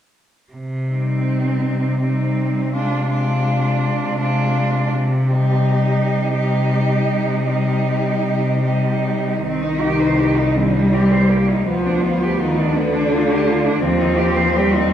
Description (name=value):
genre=classical, lyrical piece for cello ensemble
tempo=48-57 BPM (dotted quarters)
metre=6/8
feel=rubato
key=C minor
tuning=A4 = 440 Hz
part: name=rich cello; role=bass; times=0.5-14.9 s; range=C2 to C3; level=-20 LUFS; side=left 1 dB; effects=none
part: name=rich cello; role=melody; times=0.9-14.9 s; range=Bb3 to G4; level=-25 LUFS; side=left 5 dB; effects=none
part: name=warm cello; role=second line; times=0.9-14.9 s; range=B3 to C5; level=-23 LUFS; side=right 4 dB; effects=none
part: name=warm cello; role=accompaniment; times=0.9-14.9 s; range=D3 to Ab3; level=-20 LUFS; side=equal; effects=none
room=wet concert hall reverb, RT60 2.2 s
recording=recorded in a church or concert hall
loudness=-16 LUFS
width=side -10 dB against mid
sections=0.5-9.4 A section; 9.4-14.9 B section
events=none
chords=0.5 Cm; 2.8 Dm7b5/C; 4.9 Cm; 11.7 G7/D (rootless); 13.8 Cm/Eb